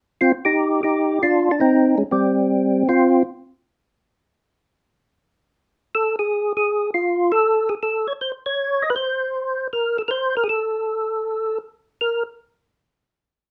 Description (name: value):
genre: jazz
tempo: 158 BPM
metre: 4/4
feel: swing 65% on 8ths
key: unclear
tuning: A4 = 440 Hz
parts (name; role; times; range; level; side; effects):
- percussive tonewheel organ; solo; 0.2-3.2, 5.9-12.2 s; G3 to Eb5; -20 LUFS; equal; slow rotary speaker, chorus vibrato
room: light reverb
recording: none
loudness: -21 LUFS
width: mono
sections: 0.0-5.9 A section; 5.9-12.0 B section; 12.0-13.5 C section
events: none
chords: 0.0 Cm; 2.9 N.C.